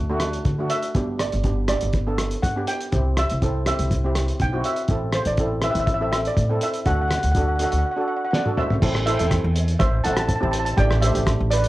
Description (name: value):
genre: calypso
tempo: 122 BPM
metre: 4/4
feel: straight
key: unclear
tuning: A4 = 441 Hz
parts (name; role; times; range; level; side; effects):
- steel pan; melody; 0.0-11.7 s; A4 to A5; -25 LUFS; right 1 dB; cassette tape, plate reverb
- upright bass; bass; 0.0-11.7 s; G1 to D3; -23 LUFS; equal; none
- steel pan; accompaniment; 0.1-11.7 s; A3 to B4; -27 LUFS; right 1 dB; cassette tape, plate reverb
- cloth-damped thuddy drum kit; drums; 0.2-11.7 s; crash cymbal, hi-hat, kick drum, rim click, snare drum, toms; -25 LUFS; equal; cassette tape
room: light reverb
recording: home recording on cassette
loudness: -19 LUFS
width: side -17 dB against mid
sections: 0.0-8.8 A section; 8.8-11.7 B section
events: break 7.8-8.8; drum fill 8.3-8.8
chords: 0.0 D; 0.9 G; 2.9 C; 4.9 Am; 6.9 D; 8.8 Am; 10.8 Dsus4/A